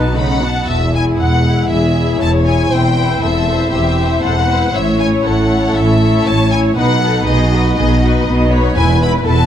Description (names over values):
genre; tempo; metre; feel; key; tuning
cinematic, heroic adventure film score; 119 BPM; 4/4; straight; E major; A4 = 439 Hz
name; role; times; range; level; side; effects
warm symphonic violin section; melody; 0.0-9.5 s; D#5 to B5; -19 LUFS; left 4 dB; none
dark symphonic violin section; second line; 0.0-9.5 s; D#4 to D#5; -22 LUFS; left 2 dB; none
warm symphonic viola section; accompaniment; 0.0-9.5 s; A3 to C#5; -22 LUFS; left 1 dB; none
warm studio double bass section; bass; 0.0-9.5 s; E1 to B1; -16 LUFS; right 1 dB; none
warm symphonic cello section; bass; 0.0-9.5 s; E2 to Db3; -18 LUFS; right 1 dB; none
mellow French horn section; sustained chords; 0.7-9.5 s; G#3 to E4; -18 LUFS; left 2 dB; none
timpani; percussion; 8.8-9.5 s; E2; -18 LUFS; equal; none
room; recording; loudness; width
moderate recital hall reverb, RT60 1.6 s; close, detailed microphones; -11 LUFS; side -10 dB against mid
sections
0.7-9.5 A section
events
none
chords
0.0 B7; 0.7 Eadd9; 2.7 C/E; 4.7 A; 6.8 B; 8.8 E